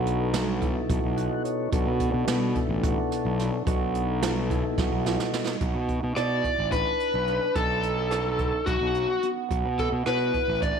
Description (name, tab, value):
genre	progressive instrumental, band music in an uneven meter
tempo	216 BPM (eighths)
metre	7/8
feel	straight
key	unclear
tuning	A4 = 440 Hz
part	mellow tonewheel organ	accompaniment	0.0-5.6 s	B2 to F#5	-30 LUFS	left 9 dB	slow rotary speaker
part	concert harp	arpeggios	0.0-10.8 s	B3 to F#4	-32 LUFS	right 12 dB	none
part	fuzz fingered electric bass	bass	0.0-10.7 s	A1 to B2	-29 LUFS	left 1 dB	overdrive
part	jazz brush drum kit	drums	0.1-10.8 s	hi-hat, kick drum, rim click, snare drum	-30 LUFS	right 2 dB	none
part	lead guitar through a small cranked amp	melody	6.2-10.8 s	F#4 to D5	-25 LUFS	left 1 dB	overdrive
room	light reverb, small room reverb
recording	1960s-style stereo with parts hard left and right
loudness	-23 LUFS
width	side -7 dB against mid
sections	0.0-5.6 A section; 5.6-10.8 B section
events	tonewheel organ fill 0.9-1.7; drum fill 4.8-5.6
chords	0.0 B7; 1.7 Bm7; 3.7 B7; 5.6 Bm7; 7.6 B7; 9.5 Bm7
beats	0.06 0.34 0.62 0.89 1.17 1.45 | 1.73 2.00 2.28 2.56 2.83 3.11 3.39 | 3.67 3.94 4.22 4.50 4.78 5.05 5.33 | 5.61 5.89 6.17 6.45 6.72 7.00 7.28 | 7.56 7.84 8.12 8.39 8.67 8.95 9.23 | 9.51 9.79 10.07 10.35 10.62